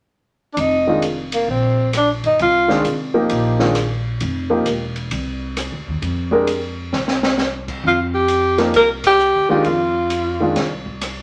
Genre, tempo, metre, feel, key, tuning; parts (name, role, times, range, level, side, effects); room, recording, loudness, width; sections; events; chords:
modal jazz; 132 BPM; 4/4; swing 66% on 8ths; F dorian; A4 = 440 Hz
warm tenor saxophone; melody; 0.5-2.8, 7.9-10.5 s; Bb3 to Bb4; -18 LUFS; equal
upright bass; bass; 0.6-11.2 s; E1 to C3; -26 LUFS; equal
open jazz drum kit; drums; 0.6-11.2 s; crash cymbal, hi-hat, kick drum, ride cymbal, rim click, snare drum; -28 LUFS; equal
warm concert grand piano; accompaniment; 0.9-10.6 s; Eb3 to Bb4; -20 LUFS; equal
wet studio reverb, RT60 0.7 s; -18 LUFS; mono
0.6-11.2 A section
drum fill 6.9-7.4; band accent 9.0
0.0 N.C.; 0.6 F7sus4